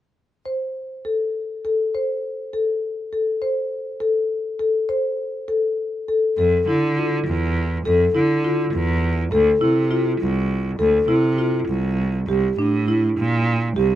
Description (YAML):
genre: contemporary instrumental, contemporary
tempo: 203 BPM (eighths)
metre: 5/8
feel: straight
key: unclear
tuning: A4 = 441 Hz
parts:
  - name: marimba with medium mallets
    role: arpeggios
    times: 0.5-13.9 s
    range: D4 to C5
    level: -20 LUFS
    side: left 1 dB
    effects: none
  - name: clear cello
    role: bass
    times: 6.4-14.0 s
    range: C2 to D3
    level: -21 LUFS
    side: right 2 dB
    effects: none
room: little or no reverb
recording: close, detailed microphones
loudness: -19 LUFS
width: side -12 dB against mid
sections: 0.4-6.4 A section; 6.4-14.0 B section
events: none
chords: 0.4 Am; 6.4 Fmaj7; 9.3 Dm7; 12.3 C7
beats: | 0.45 0.75 1.04 1.34 1.64 | 1.94 2.23 2.53 2.82 3.12 | 3.41 3.71 4.00 4.29 4.59 | 4.89 5.18 5.48 5.78 6.08 | 6.38 6.68 6.97 7.27 7.57 | 7.86 8.15 8.44 8.74 9.03 | 9.32 9.61 9.91 10.20 10.49 | 10.79 11.08 11.38 11.68 11.98 | 12.28 12.58 12.88 13.17 13.47 | 13.76